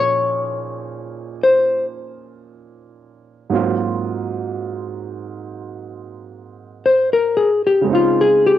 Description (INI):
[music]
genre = jazz ballad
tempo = 55 BPM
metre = 4/4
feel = swing 68% on 8ths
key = unclear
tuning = A4 = 440 Hz
[part]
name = hollow-body jazz guitar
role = melody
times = 0.0-8.6 s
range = F4 to Db5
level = -14 LUFS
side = left 3 dB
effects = cassette tape, plate reverb
[part]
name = warm baby grand piano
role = accompaniment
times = 0.0-8.6 s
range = Ab2 to Ab4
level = -23 LUFS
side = right 7 dB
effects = cassette tape, plate reverb
[sound]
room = wet studio reverb, RT60 0.6 s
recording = home recording on cassette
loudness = -16 LUFS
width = side -12 dB against mid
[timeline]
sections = 0.0-8.6 A section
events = hollow-body jazz guitar solo 0.0-8.6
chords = 0.0 Bbm7; 3.5 Ab13; 7.9 Dbmaj9